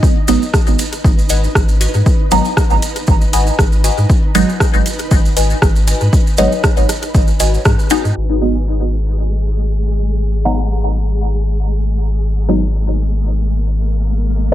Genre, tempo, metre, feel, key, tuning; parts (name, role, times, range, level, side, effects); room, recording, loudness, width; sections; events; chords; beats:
dub techno; 118 BPM; 4/4; swing 53% on 16ths; G# minor; A4 = 439 Hz
electronic kick drum; drums; 0.0-7.8 s; -13 LUFS; equal; overdrive
maracas; percussion; 0.0-8.1 s; -25 LUFS; right 4 dB
flickering grainy texture; texture; 0.0-14.5 s; G#3 to B4; -26 LUFS; equal; built-in reverb, sidechain pumping
filtered dub chord stab; stabs; 0.3-14.5 s; F#3 to D#4; -18 LUFS; right 1 dB; phaser, sidechain pumping, dub echo
soft dub sub bass; bass; 0.3-14.5 s; G#1 to G#2; -16 LUFS; equal; sidechain pumping
deep house drum kit; drums; 0.3-8.0 s; hi-hat, rim click; -20 LUFS; equal; overdrive, dub echo
filtered dub chord stab; riff; 1.3-8.1 s; F#4 to G#5; -24 LUFS; left 3 dB; phaser, sidechain pumping, dub echo
light reverb; low-pass filter; -12 LUFS; side -13 dB against mid
0.0-8.2 A section; 8.2-14.5 B section
band accent 7.7; filter sweep 8.2-14.5
0.0 G#m7; 8.2 N.C.
| 0.03 0.54 1.04 1.55 | 2.06 2.57 3.08 3.59 | 4.10 4.60 5.11 5.62 | 6.13 6.64 7.15 7.66 | 8.16 8.67 9.18 9.69 | 10.20 10.71 11.21 11.72 | 12.23 12.74 13.25 13.76 | 14.27